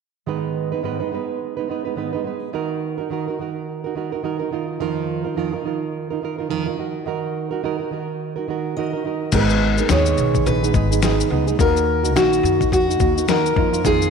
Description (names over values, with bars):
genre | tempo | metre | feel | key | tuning
acoustic pop | 106 BPM | 4/4 | swing 60% on 16ths | Eb minor | A4 = 443 Hz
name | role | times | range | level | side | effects
nylon-string guitar | accompaniment | 0.3-14.1 s | F2 to Cb5 | -22 LUFS | right 8 dB | none
fingerpicked steel-string acoustic guitar | melody | 8.8-14.1 s | Gb4 to Eb5 | -20 LUFS | left 2 dB | none
upright bass | bass | 9.3-14.1 s | Ab1 to Gb2 | -21 LUFS | left 2 dB | none
dusty soul sampler-style drum kit | drums | 9.3-14.1 s | crash cymbal, kick drum, shaker, snare drum | -22 LUFS | left 6 dB | overdrive
room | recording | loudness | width
moderate echo chamber reverb, RT60 2.1 s | 1960s-style stereo with parts hard left and right | -19 LUFS | side -6 dB against mid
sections
0.3-9.3 A section; 9.3-14.1 B section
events
none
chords
0.3 Abm; 2.5 Ebm; 4.5 Bbsus4/F; 6.8 Ebm; 9.3 Abm; 11.6 Ebm; 13.6 Bbsus4/F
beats
| 0.26 0.83 1.40 1.96 | 2.53 3.10 3.66 4.23 | 4.80 5.36 5.93 6.50 | 7.06 7.63 8.20 8.76 | 9.33 9.89 10.46 11.02 | 11.59 12.15 12.72 13.28 | 13.85